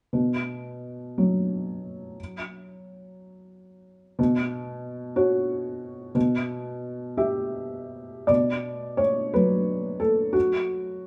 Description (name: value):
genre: neoclassical minimalist piano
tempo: 52-62 BPM (dotted quarters)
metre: 6/8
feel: rubato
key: B minor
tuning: A4 = 440 Hz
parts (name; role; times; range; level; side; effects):
- felt-muted upright piano; solo; 0.1-11.1 s; B2 to E5; -26 LUFS; equal; none
room: moderate large studio reverb, RT60 0.9 s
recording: band playing live in one room, nothing above 10.6 kHz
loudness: -26 LUFS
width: mono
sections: 0.1-8.3 A section; 8.3-11.1 B section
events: none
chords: 0.1 B5; 4.2 Bsus2; 6.2 Em/B; 8.3 D/B